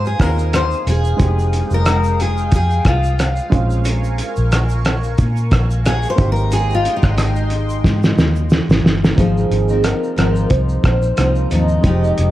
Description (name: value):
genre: indie pop, bedroom pop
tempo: 90 BPM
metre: 4/4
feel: swing 55% on 16ths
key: Ab major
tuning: A4 = 438 Hz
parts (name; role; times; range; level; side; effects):
- picked steel-string acoustic guitar; accompaniment; 0.0-12.3 s; Ab2 to C5; -21 LUFS; left 2 dB; lush chorus, warbly pitch drift
- warm upright piano; accompaniment; 0.0-12.3 s; Ab3 to G5; -28 LUFS; right 4 dB; dub echo
- phased analog pad; sustained chords; 0.0-9.2 s; Ab3 to Eb6; -28 LUFS; equal; phaser, chorus
- vintage muted fingered electric bass; bass; 0.0-12.3 s; Fb1 to Bb2; -17 LUFS; equal; none
- cloth-damped thuddy drum kit; drums; 0.0-12.3 s; hi-hat, kick drum, rim click, shaker, snare drum; -17 LUFS; equal; none
- egg shaker; percussion; 0.1-9.2 s; none; -44 LUFS; right 6 dB; none
- warm velvety synth lead; melody; 9.2-12.3 s; Ab4 to Eb5; -21 LUFS; right 2 dB; analog chorus, dub echo
room: light reverb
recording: echo-heavy mix, cassette tape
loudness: -14 LUFS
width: side -15 dB against mid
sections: 0.0-9.2 A section; 9.2-12.3 B section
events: steel-string acoustic guitar solo 0.0-9.2; drum fill 7.8-9.2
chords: 0.0 Ab6; 1.2 Fm9; 3.5 Bbm7; 6.2 Abmaj7; 9.2 Ab6